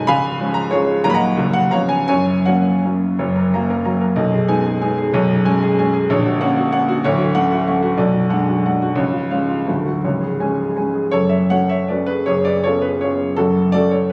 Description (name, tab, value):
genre	classical, romantic triple-time dance for piano with dotted rhythms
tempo	149-202 BPM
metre	3/4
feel	rubato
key	F# major, F# minor from 7.0 s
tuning	A4 = 440 Hz
part	warm baby grand piano	solo	0.0-14.1 s	A#0 to B5	-18 LUFS	equal	none
room	light reverb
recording	recorded on a phone in the room, club reverb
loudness	-18 LUFS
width	mono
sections	0.0-3.2 A section; 3.2-11.1 A section; 11.1-14.1 B section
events	none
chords	0.1 C#; 1.0 D#m; 1.4 F#/C#; 1.7 C#7; 2.1 F#; 4.2 G#m/B; 5.1 C#5/B; 6.1 F#/A#; 7.0 Dmaj7; 8.0 G#m7b5/B; 9.0 C#; 9.7 D; 10.0 C#5; 11.1 F#m; 12.3 C#7/F#; 13.4 F#m